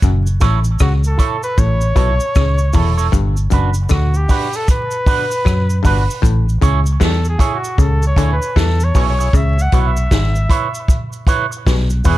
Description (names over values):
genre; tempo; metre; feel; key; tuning
roots reggae; 77 BPM; 4/4; swing 62% on 16ths; A major; A4 = 441 Hz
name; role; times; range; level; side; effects
muted clav; riff; 0.0-12.2 s; E2 to F#3; -23 LUFS; left 6 dB; none
vintage muted fingered electric bass; bass; 0.0-12.2 s; E1 to F#2; -15 LUFS; equal; none
vintage drum kit; drums; 0.0-12.2 s; hi-hat, kick drum, rim click, snare drum; -17 LUFS; equal; none
cabasa; percussion; 0.0-12.2 s; none; -33 LUFS; right 3 dB; none
electric guitar with an envelope filter; accompaniment; 0.4-12.2 s; D4 to C#5; -22 LUFS; right 7 dB; tape echo, plate reverb
clear flugelhorn; melody; 0.8-12.2 s; F#4 to F#5; -22 LUFS; equal; tape echo, plate reverb
room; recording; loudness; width
light reverb; vinyl crackle; -13 LUFS; side -16 dB against mid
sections
0.0-12.2 A section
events
flugelhorn solo 0.0-12.2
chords
0.0 F#m7; 3.1 Gmaj7; 6.2 Amaj7; 9.3 C#m7